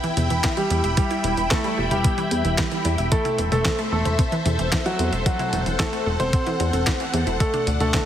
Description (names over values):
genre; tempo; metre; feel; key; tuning
italo disco; 112 BPM; 4/4; straight; unclear; A4 = 440 Hz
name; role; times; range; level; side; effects
lush unison pad; sustained chords; 0.0-8.1 s; D4 to B5; -27 LUFS; left 1 dB; chorus, phaser
wide unison pluck; arpeggios; 0.0-8.1 s; D3 to E5; -30 LUFS; right 3 dB; digital delay
clean 12-bit digital drum machine; drums; 0.0-8.0 s; handclaps, hi-hat, snare drum, toms; -27 LUFS; left 1 dB; none
impact; sound effects; 0.0-1.0 s; none; barely audible; none; none
chorused synth bass; bass; 0.2-7.9 s; E1 to E2; -24 LUFS; equal; none
electronic kick drum; drums; 0.4-8.0 s; none; -23 LUFS; equal; none
clear concert grand piano; melody; 0.6-8.1 s; F#3 to C5; -26 LUFS; equal; tape echo
room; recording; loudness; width
moderate lush hall reverb, RT60 2.0 s; heavily compressed radio sound, multiband compression; -19 LUFS; side -10 dB against mid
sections
0.0-8.1 A section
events
impact 0.0-1.0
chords
0.0 Em; 3.1 Am/E; 7.4 D